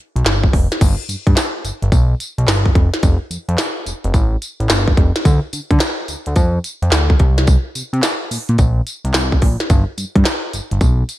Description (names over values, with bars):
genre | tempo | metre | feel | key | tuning
R&B, new jack swing | 108 BPM | 4/4 | swing 65% on 16ths | unclear | A4 = 440 Hz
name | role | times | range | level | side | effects
fat analog bass | bass | 0.2-11.0 s | F1 to D3 | -16 LUFS | equal | none
minimal click drum kit | drums | 0.2-11.2 s | crash cymbal, handclaps, hi-hat, kick drum, snare drum, tambourine | -15 LUFS | equal | overdrive, gated reverb
room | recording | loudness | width
little or no reverb | bright 1980s-style digital production | -14 LUFS | side -15 dB against mid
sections
0.8-11.2 A section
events
none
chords
none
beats
0.26 | 0.81 1.37 1.92 2.48 | 3.03 3.59 4.14 4.70 | 5.25 5.81 6.37 6.92 | 7.48 8.03 8.59 9.14 | 9.70 10.26 10.81